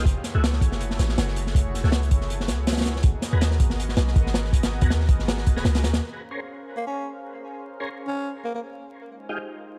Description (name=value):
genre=drum and bass, jungle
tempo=161 BPM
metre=4/4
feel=swing 55% on 16ths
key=Bb minor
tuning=A4 = 442 Hz
part: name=lush unison pad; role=sustained chords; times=0.0-9.8 s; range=Ab3 to F5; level=-38 LUFS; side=equal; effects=chorus
part: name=tonewheel organ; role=stabs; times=0.0-9.4 s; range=Ab3 to C5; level=-39 LUFS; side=equal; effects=chorus vibrato, slow rotary speaker, low-pass filter, dub echo
part: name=warm 808-style bass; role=bass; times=0.0-6.0 s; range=Eb1 to Eb2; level=-26 LUFS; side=equal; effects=none
part: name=crunchy breakbeat drum kit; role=drums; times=0.1-6.0 s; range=hi-hat, kick drum, snare drum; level=-25 LUFS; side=equal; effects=none
part: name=growling tenor saxophone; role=melody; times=6.8-8.6 s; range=Bb3 to Db4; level=-35 LUFS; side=equal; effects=dub echo
room=small room reverb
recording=vinyl crackle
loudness=-24 LUFS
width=mono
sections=0.0-6.0 A section; 6.0-9.8 B section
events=filter sweep on analog synth pad 6.0-9.8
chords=0.1 Gbm9; 3.0 Abm9; 6.0 Bbm9; 9.0 Fm9